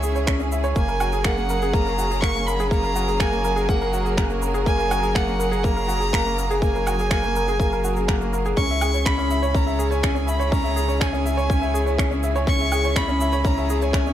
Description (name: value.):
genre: piano and strings electronica.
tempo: 123 BPM.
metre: 4/4.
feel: straight.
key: unclear.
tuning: A4 = 440 Hz.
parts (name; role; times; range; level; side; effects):
rich violin; melody; 0.0-14.1 s; E5 to C#6; -27 LUFS; right 2 dB; none.
rich studio string section; sustained chords; 0.0-14.1 s; C#3 to A#4; -29 LUFS; right 2 dB; sidechain pumping.
felt-muted upright piano; riff; 0.0-14.1 s; A#3 to E5; -24 LUFS; left 1 dB; none.
round analog bass; bass; 0.0-14.1 s; F#1 to C#2; -25 LUFS; equal; sidechain pumping.
electronic shaker, finger snaps and woodblock; drums; 0.0-14.1 s; none; -30 LUFS; right 2 dB; overdrive.
electronic kick drum; drums; 0.3-14.0 s; none; -23 LUFS; equal; overdrive.
room: light reverb.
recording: none.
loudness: -19 LUFS.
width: side -11 dB against mid.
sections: 0.0-14.1 A section.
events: none.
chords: 0.0 C#m; 0.8 F#add9; 8.6 C#m.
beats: 0.28 | 0.77 1.25 1.74 2.23 | 2.72 3.20 3.69 4.18 | 4.67 5.16 5.64 6.13 | 6.62 7.11 7.59 8.08 | 8.57 9.06 9.55 10.03 | 10.52 11.01 11.50 11.98 | 12.47 12.96 13.45 13.94.